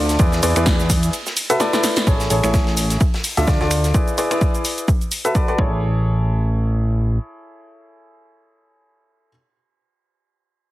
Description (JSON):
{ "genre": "piano house", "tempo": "128 BPM", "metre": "4/4", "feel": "swing 56% on 16ths", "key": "A major", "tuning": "A4 = 445 Hz", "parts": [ { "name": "clear upright piano", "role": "riff", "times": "0.0-9.3 s", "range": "D4 to E5", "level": "-21 LUFS", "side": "left 1 dB", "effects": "sidechain pumping, low-pass filter, tape echo" }, { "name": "fat analog bass", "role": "bass", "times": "0.0-7.2 s", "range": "A1 to E2", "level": "-19 LUFS", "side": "equal", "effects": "sidechain pumping" }, { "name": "modern studio drum kit", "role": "drums", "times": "0.1-3.9 s", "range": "hi-hat, ride cymbal, snare drum", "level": "-31 LUFS", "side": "equal", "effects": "sidechain pumping on cymbals, high-pass filter on cymbals, sidechain pumping on hats, high-pass filter on hats, high-pass filter on snare, high-pass filter on room" }, { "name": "punchy analog drum machine", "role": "drums", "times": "0.1-5.6 s", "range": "cabasa, finger snaps, hi-hat, ride cymbal, snare drum", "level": "-23 LUFS", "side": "equal", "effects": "overdrive" }, { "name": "electronic kick drum", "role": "drums", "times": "0.2-5.7 s", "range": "none", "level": "-18 LUFS", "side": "equal", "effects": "overdrive" } ], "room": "light reverb, small room ambience", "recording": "heavily compressed radio sound, multiband compression", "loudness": "-16 LUFS", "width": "side -16 dB against mid", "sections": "0.0-2.1 A section; 2.1-5.8 B section; 5.8-9.6 C section", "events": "drop 0.0-2.1; break 1.1-2.1; drum fill 1.6-2.1; filter sweep on upright piano 2.1-5.8", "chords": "0.2 E7; 1.1 B5; 1.6 E7sus4; 2.1 Amaj7; 3.0 Dm; 3.9 E7; 4.9 Bm7; 5.6 Amaj7" }